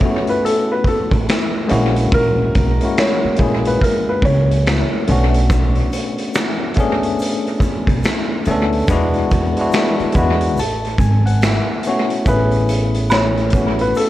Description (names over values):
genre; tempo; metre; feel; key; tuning
lo-fi hip hop; 71 BPM; 4/4; swing 62% on 16ths; A major; A4 = 440 Hz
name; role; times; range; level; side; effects
felt-muted upright piano; melody; 0.0-4.6, 12.3-14.1 s; A4 to C#5; -21 LUFS; equal; analog delay
bell-like tine electric piano; accompaniment; 0.0-14.1 s; G#3 to B5; -20 LUFS; left 2 dB; medium stereo tremolo, cassette tape
raw garage drum kit; drums; 0.0-14.1 s; finger snaps, hi-hat, kick drum, snare drum; -19 LUFS; equal; vintage 12-bit sampler grit, analog delay
upright bass; bass; 1.1-13.9 s; G#1 to E2; -18 LUFS; equal; none
egg shaker and woodblock; percussion; 5.5-14.1 s; none; -26 LUFS; right 2 dB; analog delay
room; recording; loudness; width
light reverb, small room ambience; echo-heavy mix, cassette tape; -14 LUFS; side -14 dB against mid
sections
0.0-12.3 A section; 12.3-14.1 B section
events
none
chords
0.0 Amaj7; 1.7 F#7/A#; 5.1 Bm7; 8.9 E7; 10.6 A6